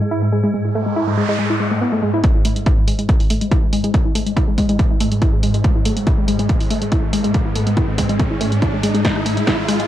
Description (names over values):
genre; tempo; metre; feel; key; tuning
driving peak-time techno; 141 BPM; 4/4; straight; unclear; A4 = 440 Hz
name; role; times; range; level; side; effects
warbly dusty pluck; riff; 0.0-9.8 s; G#3 to E4; -20 LUFS; equal; chorus, sidechain pumping, tape echo
swarming drone; drone; 0.0-9.9 s; G#2; -23 LUFS; equal; built-in reverb, sidechain pumping
noise sweep and riser; sound effects; 0.7-9.9 s; none; -27 LUFS; right 1 dB; none
electronic kick drum; drums; 2.2-9.6 s; none; -17 LUFS; equal; none
punchy analog drum machine; drums; 2.2-9.9 s; hi-hat, rim click, snare drum; -26 LUFS; equal; sidechain pumping on cymbals, sidechain pumping on hats
room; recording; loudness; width
light reverb; dark, warm production, high-pass filter, low-pass filter; -15 LUFS; side -12 dB against mid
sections
0.0-2.2 A section; 2.2-9.9 B section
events
filter sweep on synth arpeggio sound 0.0-2.2; filter sweep 0.0-2.2, 2.2-9.9; noise sweep 0.7-2.2; build-up 2.2-9.9; riser 2.2-9.9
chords
0.0 N.C.; 2.2 E/G#